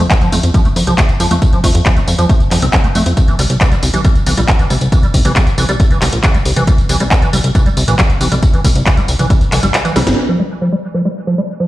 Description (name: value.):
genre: uplifting trance.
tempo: 137 BPM.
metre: 4/4.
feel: straight.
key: unclear.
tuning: A4 = 441 Hz.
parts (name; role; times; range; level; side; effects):
liquid acid bass; arpeggios; 0.0-11.7 s; E3 to C4; -18 LUFS; right 1 dB; analog chorus, vintage 12-bit sampler grit, sidechain pumping, dub echo.
plucky analog bass; bass; 0.0-10.1 s; G1 to F2; -14 LUFS; equal; sidechain pumping.
techno drum kit; drums; 0.0-10.2 s; handclaps, hi-hat, snare drum, tambourine; -18 LUFS; equal; low-pass filter on hats, low-pass filter on perc, low-pass filter on snare, low-pass filter on room.
electronic kick drum; drums; 0.1-9.4 s; none; -12 LUFS; equal; none.
room: light reverb.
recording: played on a big sound system in a bare room, stone room reverb.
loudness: -10 LUFS.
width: side -16 dB against mid.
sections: 0.0-10.2 A section; 10.2-11.7 B section.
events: kick drops out 9.7-10.2; drum fill 10.0; band accent 10.1.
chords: 0.0 N.C.; 3.2 C; 10.2 Fsus2.